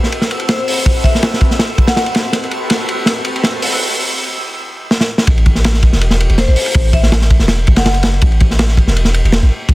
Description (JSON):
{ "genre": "drum and bass, jungle", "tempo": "163 BPM", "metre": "4/4", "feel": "swing 54% on 16ths", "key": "A dorian", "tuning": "A4 = 439 Hz", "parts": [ { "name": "lush unison pad", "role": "sustained chords", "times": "0.0-3.8 s", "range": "C4 to B4", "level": "-23 LUFS", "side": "equal", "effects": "chorus" }, { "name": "crunchy breakbeat drum kit", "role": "drums", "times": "0.0-9.7 s", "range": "hi-hat, kick drum, ride cymbal, snare drum", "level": "-13 LUFS", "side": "equal", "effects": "none" }, { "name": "twinkling granular texture", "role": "texture", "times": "0.0-3.8 s", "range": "E6", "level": "-27 LUFS", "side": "right 3 dB", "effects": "built-in reverb" }, { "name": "marimba with medium hard mallets", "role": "melody", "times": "0.5-2.0, 6.4-7.9 s", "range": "C5 to F#5", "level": "-22 LUFS", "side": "left 3 dB", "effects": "dub echo" }, { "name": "long sustained 808-style bass", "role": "bass", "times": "5.3-9.7 s", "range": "E1 to A1", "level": "-13 LUFS", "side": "equal", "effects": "none" } ], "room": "small room ambience", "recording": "dense, heavily limited modern master", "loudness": "-11 LUFS", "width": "side -19 dB against mid", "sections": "0.0-5.3 A section; 5.3-9.7 B section", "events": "build-up 0.0-5.3; filter sweep on analog synth pad 0.0-5.3; drum fill 2.3-3.8, 4.9-5.3; drop 5.3-9.7", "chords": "0.0 Am69; 5.3 A5" }